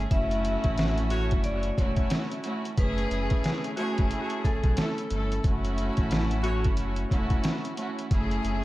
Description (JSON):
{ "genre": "hip hop, boom-bap hip-hop", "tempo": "90 BPM", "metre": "4/4", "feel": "swing 60% on 16ths", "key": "F# minor", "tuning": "A4 = 438 Hz", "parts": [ { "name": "clear chamber string section", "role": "accompaniment", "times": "0.0-8.6 s", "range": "A3 to A4", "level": "-30 LUFS", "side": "equal", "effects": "cassette tape" }, { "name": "warm sub bass", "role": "bass", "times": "0.0-8.6 s", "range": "E1 to B1", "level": "-30 LUFS", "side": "equal", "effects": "none" }, { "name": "vibraphone with medium hard mallets", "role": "melody", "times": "0.1-5.4 s", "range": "A4 to E5", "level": "-35 LUFS", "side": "left 1 dB", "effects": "tape echo" }, { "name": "trip hop sampler-style drum kit", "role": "drums", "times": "0.1-8.6 s", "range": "hi-hat, kick drum, snare drum", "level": "-27 LUFS", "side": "equal", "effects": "none" }, { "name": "warm horn section", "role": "stabs", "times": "1.1-6.7 s", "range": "A3 to C#5", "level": "-36 LUFS", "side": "equal", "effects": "tape echo" } ], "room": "moderate plate reverb, RT60 1.8 s", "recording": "dreamy mix soaked in reverb, vinyl crackle", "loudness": "-24 LUFS", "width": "side -17 dB against mid", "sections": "0.0-8.6 A section", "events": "none", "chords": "0.1 Esus4; 2.8 F#m7; 5.4 A6; 8.1 F#m7" }